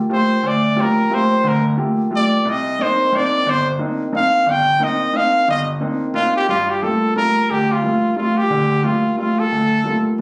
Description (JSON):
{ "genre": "jazz", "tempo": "179 BPM", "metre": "3/4", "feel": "swing 62% on 8ths", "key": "G minor", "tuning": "A4 = 439 Hz", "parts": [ { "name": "clear trumpet", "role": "melody", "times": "0.1-10.1 s", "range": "F4 to G5", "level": "-20 LUFS", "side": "equal", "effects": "none" }, { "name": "warm baby grand piano", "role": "accompaniment", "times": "0.1-10.2 s", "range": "G1 to G4", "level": "-21 LUFS", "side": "equal", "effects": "none" } ], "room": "moderate studio reverb, RT60 0.8 s", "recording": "recorded on a phone in the room, club reverb", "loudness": "-18 LUFS", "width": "mono", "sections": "0.0-6.5 A section; 6.5-10.2 B section", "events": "trumpet solo 0.0-6.5", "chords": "0.0 Gm9; 2.4 Cm9; 6.5 Gm9", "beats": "0.10 | 0.43 0.77 1.11 | 1.44 1.78 2.11 | 2.45 2.78 3.12 | 3.46 3.79 4.13 | 4.46 4.80 5.13 | 5.47 5.80 6.14 | 6.48 6.81 7.15 | 7.49 7.82 8.16 | 8.50 8.83 9.17 | 9.51 9.84 10.18" }